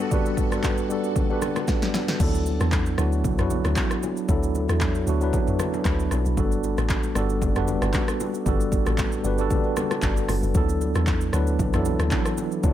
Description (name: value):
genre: amapiano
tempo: 115 BPM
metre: 4/4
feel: swing 55% on 16ths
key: D major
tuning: A4 = 440 Hz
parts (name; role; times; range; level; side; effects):
- tine electric piano; accompaniment; 0.0-12.7 s; E3 to B5; -25 LUFS; equal; medium stereo tremolo, tape echo
- phased string machine; sustained chords; 0.0-2.2 s; G2 to A4; -36 LUFS; left 1 dB; ensemble chorus, phaser
- deep house drum kit; drums; 0.0-12.7 s; crash cymbal, handclaps, hi-hat, kick drum, rim click, shaker, snare drum, toms; -25 LUFS; equal; none
- congas and bongos; percussion; 0.1-12.7 s; none; -35 LUFS; left 7 dB; tape echo
- deep log drum bass; bass; 2.2-12.7 s; F#1 to E2; -25 LUFS; equal; none
room: little or no reverb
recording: echo-heavy mix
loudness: -21 LUFS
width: side -12 dB against mid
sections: 0.0-2.2 A section; 2.2-12.7 B section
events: drum fill 1.7-2.2; drop 2.2-12.7; tine electric piano fill 5.6-6.4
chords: 0.0 Gmaj9; 2.2 D69; 6.4 Gmaj9; 10.5 D69